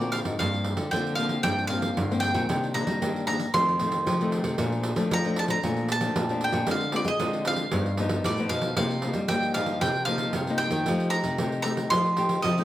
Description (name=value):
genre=samba and choro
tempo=115 BPM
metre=4/4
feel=straight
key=G minor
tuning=A4 = 440 Hz
part: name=bowl-back mandolin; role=melody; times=0.0-12.6 s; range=D5 to C6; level=-28 LUFS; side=right 1 dB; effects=none
part: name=nylon-string guitar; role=accompaniment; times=0.0-12.6 s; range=F2 to A#4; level=-30 LUFS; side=left 3 dB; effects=none
part: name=nylon-string guitar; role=bass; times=0.0-12.6 s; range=G2 to Ab3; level=-29 LUFS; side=equal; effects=none
part: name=pandeiro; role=percussion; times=0.0-12.6 s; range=none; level=-31 LUFS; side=right 3 dB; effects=none
room=moderate large studio reverb, RT60 1.1 s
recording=none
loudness=-23 LUFS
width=side -13 dB against mid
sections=0.4-12.6 A section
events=none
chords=0.4 Gm7; 2.5 Cm9; 3.5 F7; 4.6 Bbmaj7; 6.7 Dm7b5; 7.7 G7b13; 8.8 Cm7; 10.9 F9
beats=| 0.39 0.92 1.45 1.97 | 2.50 3.02 3.54 4.07 | 4.59 5.12 5.64 6.17 | 6.69 7.21 7.74 8.26 | 8.78 9.31 9.83 10.35 | 10.88 11.40 11.92 12.45